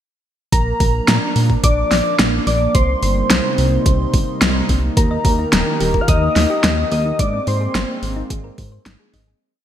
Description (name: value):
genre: synthwave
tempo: 108 BPM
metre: 4/4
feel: straight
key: unclear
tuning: A4 = 440 Hz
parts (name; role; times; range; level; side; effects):
- soft octave-layered synth lead; melody; 0.5-8.0 s; Bb4 to F5; -22 LUFS; left 1 dB; chorus, tremolo, ping-pong delay
- FM electric piano with soft pad layer; second line; 0.5-8.0 s; Bb5 to F6; -25 LUFS; right 1 dB; chorus, ping-pong delay
- warm analog pad; sustained chords; 0.5-9.4 s; C3 to Bb4; -25 LUFS; equal; chorus, sidechain pumping
- chorused synth bass; bass; 0.5-9.3 s; Eb1 to Bb2; -19 LUFS; equal; none
- electronic kick drum; drums; 0.5-9.2 s; none; -17 LUFS; equal; overdrive
- pop drum kit; drums; 0.5-9.2 s; hi-hat, snare drum; -19 LUFS; equal; overdrive, gated reverb
- thumb-piano-like synth pluck; arpeggios; 5.0-9.4 s; Bb3 to Eb5; -28 LUFS; left 2 dB; chorus, ping-pong delay
room: moderate lush hall reverb, RT60 1.7 s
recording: bright 1980s-style digital production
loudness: -14 LUFS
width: side -10 dB against mid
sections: 0.5-9.4 chorus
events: fade-out 6.5-9.4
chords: 0.5 Bb; 2.7 Cm7; 5.0 Eb; 7.2 Abadd9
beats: | 0.53 1.08 1.64 2.19 | 2.75 3.30 3.86 4.42 | 4.97 5.53 6.08 6.64 | 7.19 7.75 8.30 8.86